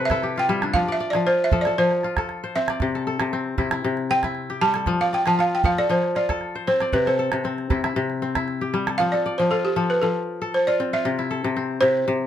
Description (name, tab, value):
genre	west african traditional, West African string and xylophone music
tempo	116 BPM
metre	4/4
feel	straight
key	F lydian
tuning	A4 = 443 Hz
part	balafon	melody	0.0-12.3 s	G4 to A5	-21 LUFS	right 2 dB	plate reverb
part	kora	arpeggios	0.0-12.3 s	C3 to E5	-24 LUFS	left 4 dB	none
part	calabash	percussion	0.1-9.0 s	none	-26 LUFS	right 4 dB	none
room	moderate studio reverb, RT60 0.5 s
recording	none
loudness	-20 LUFS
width	side -10 dB against mid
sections	0.0-9.0 A section; 9.0-12.3 B section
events	kora fill 0.0-0.7; balafon solo 0.0-9.0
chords	0.0 C; 0.7 F; 2.8 C; 4.9 F; 6.9 C; 9.0 F; 11.0 C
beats	0.23 | 0.74 1.26 1.78 2.29 | 2.81 3.32 3.84 4.35 | 4.87 5.38 5.90 6.41 | 6.93 7.44 7.96 8.47 | 8.99 9.50 10.02 10.53 | 11.05 11.56 12.08